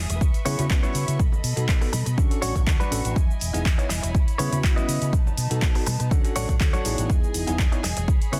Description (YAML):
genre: filtered disco house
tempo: 122 BPM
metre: 4/4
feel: swing 53% on 16ths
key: E major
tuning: A4 = 441 Hz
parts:
  - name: clear studio violin section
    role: sustained chords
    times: 0.0-8.4 s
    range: D4 to D#6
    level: -39 LUFS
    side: equal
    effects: sidechain pumping, low-pass filter
  - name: fingered electric bass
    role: bass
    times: 0.0-8.4 s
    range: E1 to C#3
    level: -29 LUFS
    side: equal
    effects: tube saturation, sidechain pumping, low-pass filter
  - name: direct-recorded clean electric guitar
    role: riff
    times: 0.1-8.4 s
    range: D4 to D#5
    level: -32 LUFS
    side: equal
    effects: vintage 12-bit sampler grit, sidechain pumping, low-pass filter
  - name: punchy analog drum machine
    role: drums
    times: 0.1-8.4 s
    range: cabasa, handclaps, hi-hat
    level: -33 LUFS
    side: equal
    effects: overdrive
  - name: maracas and congas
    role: percussion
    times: 0.1-8.4 s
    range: none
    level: -41 LUFS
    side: equal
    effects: none
  - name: electronic kick drum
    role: drums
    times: 0.2-8.2 s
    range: none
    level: -24 LUFS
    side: equal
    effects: overdrive
  - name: bell-like tine electric piano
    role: accompaniment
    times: 0.4-8.4 s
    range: B3 to C#5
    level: -33 LUFS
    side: equal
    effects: phaser, vintage 12-bit sampler grit, sidechain pumping, low-pass filter
room: digital ambience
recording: dense, heavily limited modern master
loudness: -23 LUFS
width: mono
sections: 0.0-8.4 A section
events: none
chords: 0.2 C#m7; 1.2 B7; 2.2 Dmaj7; 3.2 Emaj7; 4.1 C#m7; 5.1 B7; 6.1 Dmaj7; 7.1 Emaj7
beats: 0.21 0.70 | 1.20 1.69 2.18 2.67 | 3.16 3.66 4.15 4.64 | 5.13 5.62 6.12 6.61 | 7.10 7.59 8.08